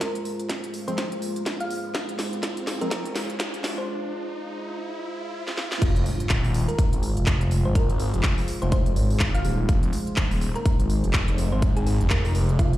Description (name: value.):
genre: bass house.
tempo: 124 BPM.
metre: 4/4.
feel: swing 59% on 16ths.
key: F minor.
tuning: A4 = 440 Hz.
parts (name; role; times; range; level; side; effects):
thumb-piano-like synth pluck; melody; 0.0-12.8 s; F4 to F5; -34 LUFS; equal; chorus, dub echo.
dark analog pad; sustained chords; 0.0-12.8 s; Ab3 to C5; -33 LUFS; equal; chorus, sidechain pumping.
electronic kick drum; drums; 0.0-12.7 s; none; -23 LUFS; equal; overdrive, high-pass filter on kick, small room ambience.
house drum kit; drums; 0.0-12.8 s; crash cymbal, handclaps, hi-hat, snare drum; -30 LUFS; equal; small room ambience.
riser and impact; sound effects; 0.0-7.8 s; none; -35 LUFS; right 1 dB; none.
percussive organ stab; stabs; 0.9-2.9 s; F3 to C4; -33 LUFS; equal; analog chorus, sidechain pumping, dub echo.
phased detuned saw bass; bass; 5.8-12.7 s; Eb1 to Ab1; -23 LUFS; equal; phaser, overdrive, sidechain pumping.
room: digital ambience.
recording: played on a big sound system in a bare room, large studio reverb, high-pass filter.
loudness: -22 LUFS.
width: side -15 dB against mid.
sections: 0.0-5.8 A section; 5.8-12.8 B section.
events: build-up 0.0-5.8; drum fill 0.0-3.9, 5.5-5.8; riser 0.0-5.8; filter sweep 0.0-5.8; break 3.9-5.8; drop 5.8-12.8; impact 5.8-7.8.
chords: 0.0 Fm.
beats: | 0.01 0.49 0.98 1.46 | 1.95 2.43 2.91 3.40 | 3.88 4.37 4.85 5.33 | 5.82 6.30 6.79 7.27 | 7.75 8.24 8.72 9.21 | 9.69 10.17 10.66 11.14 | 11.62 12.11 12.59.